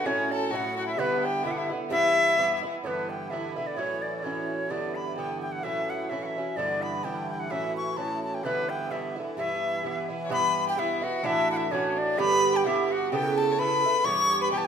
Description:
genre	celtic folk, Celtic polka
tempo	128 BPM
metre	2/4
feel	swing 55% on 8ths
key	E dorian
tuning	A4 = 443 Hz
part	bright reedy wooden flute	melody	0.0-14.7 s	B4 to C#6	-27 LUFS	left 1 dB	none
part	clear fiddle	second line	0.0-2.6, 10.2-14.6 s	B3 to C#5	-33 LUFS	left 5 dB	none
part	Irish bouzouki	accompaniment	0.0-14.7 s	G2 to A4	-29 LUFS	right 4 dB	none
part	musette accordion	drone	2.8-10.4 s	E3 to E4	-39 LUFS	left 1 dB	none
room	wet recital hall reverb, RT60 1.5 s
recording	minimal, uncompressed stereo recording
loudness	-24 LUFS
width	side -7 dB against mid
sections	0.0-2.8 A section; 2.8-10.3 A section; 10.3-14.7 B section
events	none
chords	0.0 F#m7; 1.0 Em7; 1.9 Em; 2.8 Em7; 3.8 F#m7; 4.7 Em7; 5.6 F#m7; 6.6 Em7; 7.5 F#m7; 8.4 Em7; 9.4 Em; 11.2 Dadd9; 12.2 G; 13.1 Aadd9; 14.0 Em

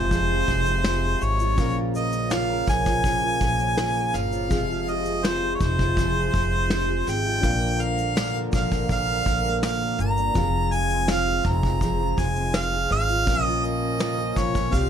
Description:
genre	acoustic pop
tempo	82 BPM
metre	4/4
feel	straight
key	unclear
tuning	A4 = 440 Hz
part	warm harmonica	melody	0.0-14.9 s	C5 to Bb5	-25 LUFS	right 1 dB	none
part	fingerpicked steel-string acoustic guitar	accompaniment	0.0-14.9 s	Bb2 to Bb4	-28 LUFS	equal	double-tracked left and right
part	reed electric piano	accompaniment	0.0-14.9 s	Ab3 to F5	-36 LUFS	left 4 dB	none
part	pedal harmonium	sustained chords	0.0-14.9 s	C3 to Db4	-35 LUFS	right 1 dB	none
part	upright bass	bass	0.0-14.9 s	F1 to C2	-27 LUFS	equal	none
part	vintage brush drum kit	drums	0.1-14.9 s	kick drum, shaker, snare drum	-27 LUFS	equal	none
room	light reverb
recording	none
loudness	-21 LUFS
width	side -8 dB against mid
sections	0.0-14.9 A section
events	none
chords	0.0 Fm; 1.6 Bbm; 4.5 Fm; 7.4 Bb; 10.4 Fm; 13.3 Bbm

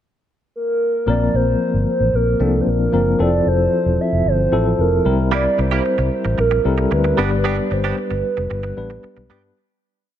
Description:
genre	pop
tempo	113 BPM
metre	4/4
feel	straight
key	unclear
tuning	A4 = 440 Hz
part	hollow clarinet-like synth lead	melody	0.6-9.3 s	A4 to E5	-20 LUFS	right 2 dB	chorus
part	tine electric piano	accompaniment	1.1-9.6 s	F3 to B4	-20 LUFS	left 3 dB	fast tremolo
part	vintage muted fingered electric bass	bass	1.1-9.5 s	E1 to G2	-20 LUFS	equal	none
part	direct-recorded clean electric guitar	riff	5.3-9.5 s	G3 to G4	-26 LUFS	right 8 dB	analog chorus, digital delay
room	light reverb, digital ambience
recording	none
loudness	-16 LUFS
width	side -10 dB against mid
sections	0.0-1.1 pickup bar; 1.1-9.6 verse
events	fade-out 7.4-9.6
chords	0.0 N.C.; 1.1 Bbsus2; 3.2 Fmaj7; 5.1 C7; 7.2 G

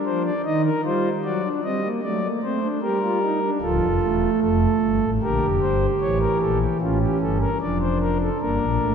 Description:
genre	classical, baroque-style 4-part fugue for pipe organ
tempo	75 BPM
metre	3/4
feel	straight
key	G minor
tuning	A4 = 440 Hz
part	pipe organ, principal	solo	0.0-8.9 s	D1 to Eb5	-20 LUFS	equal	none
room	wet church reverb, RT60 3.1 s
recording	dark, warm production, nothing above 10.5 kHz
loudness	-20 LUFS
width	side -7 dB against mid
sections	0.0-8.4 A section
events	none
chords	0.4 Cm/Eb; 1.2 D7/F#; 2.8 Gm; 3.6 Dm; 5.2 Gm; 6.0 A7; 7.6 Dm/F; 8.4 Gm

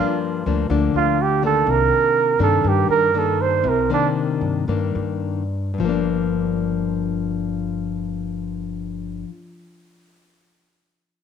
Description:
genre	bossa nova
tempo	105-124 BPM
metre	4/4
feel	straight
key	G minor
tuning	A4 = 436 Hz
part	warm flugelhorn	melody	0.0-4.1 s	D4 to C5	-19 LUFS	right 8 dB	none
part	nylon-string guitar	accompaniment	0.0-9.4 s	G2 to D4	-22 LUFS	left 8 dB	none
part	upright bass	bass	0.5-9.2 s	G1 to G2	-25 LUFS	equal	none
room	wet spring reverb, RT60 2.3 s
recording	1960s-style stereo with parts hard left and right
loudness	-18 LUFS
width	side -7 dB against mid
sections	0.0-5.8 A section; 5.8-10.3 B section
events	flugelhorn solo 0.0-5.8; slowing down 1.7-5.8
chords	0.0 Gm7; 1.7 Cm9; 5.8 Gm7

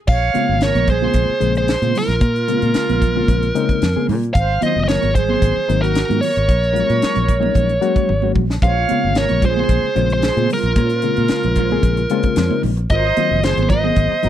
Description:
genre	electric jazz fusion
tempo	112 BPM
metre	4/4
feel	straight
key	Bb minor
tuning	A4 = 442 Hz
part	bluesy overdriven lead guitar	melody	0.1-14.3 s	Bb4 to F5	-20 LUFS	right 1 dB	distortion
part	bright concert flute	second line	0.1-14.3 s	F4 to Db5	-25 LUFS	right 15 dB	none
part	fingered electric bass	bass	0.1-14.3 s	Gb1 to Bb2	-19 LUFS	equal	none
part	crisp fusion drum kit	drums	0.1-14.3 s	crash cymbal, hi-hat, kick drum, snare drum, toms	-20 LUFS	equal	none
part	barky reed electric piano	accompaniment	0.3-14.3 s	Db3 to Ab4	-22 LUFS	left 10 dB	none
part	congas	percussion	0.3-14.0 s	none	-25 LUFS	right 14 dB	none
part	clean electric guitar	stabs	8.6-14.3 s	Gb3 to C5	-29 LUFS	left 2 dB	ensemble chorus
room	studio ambience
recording	dry, close 1970s-style studio recording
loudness	-14 LUFS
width	side -11 dB against mid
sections	0.1-14.3 A section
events	drum fill 8.1-8.6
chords	0.1 Bbm9; 4.4 Ab13; 6.5 Gbmaj9/Bb; 8.6 Bbm9; 12.9 Ab13

